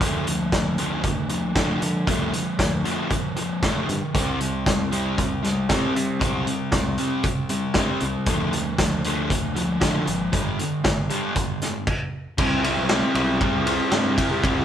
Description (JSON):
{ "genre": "indie rock", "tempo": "116 BPM", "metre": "4/4", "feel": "straight", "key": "unclear", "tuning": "A4 = 445 Hz", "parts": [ { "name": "fuzz guitar", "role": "riff", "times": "0.0-14.6 s", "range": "G2 to E4", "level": "-24 LUFS", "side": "equal", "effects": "distortion" }, { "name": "growling picked electric bass", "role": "bass", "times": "0.0-14.6 s", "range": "G1 to D3", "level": "-29 LUFS", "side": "equal", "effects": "overdrive" }, { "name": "vintage drum kit", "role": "drums", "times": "0.0-14.6 s", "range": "crash cymbal, hi-hat, kick drum, ride cymbal, snare drum", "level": "-24 LUFS", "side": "equal", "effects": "none" } ], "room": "moderate stone room reverb, RT60 1.1 s", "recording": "band playing live in one room", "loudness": "-20 LUFS", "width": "side -10 dB against mid", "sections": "0.0-12.4 A section; 12.4-14.6 B section", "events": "none", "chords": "0.0 Dm; 4.2 C5; 8.3 Dm; 10.3 G5; 12.4 Cmaj7" }